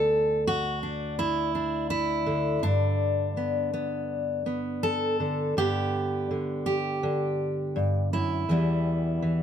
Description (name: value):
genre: folk, solo fingerstyle acoustic guitar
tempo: 82 BPM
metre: 4/4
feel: straight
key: G major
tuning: A4 = 440 Hz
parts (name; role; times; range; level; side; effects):
- fingerpicked steel-string acoustic guitar; solo; 0.0-9.4 s; D2 to A4; -25 LUFS; equal; none
room: moderate studio reverb, RT60 0.8 s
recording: none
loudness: -25 LUFS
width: side -8 dB against mid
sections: 0.0-5.6 A section; 5.6-9.4 B section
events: none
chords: 0.0 N.C.; 2.6 Gadd9; 5.6 G; 8.5 Em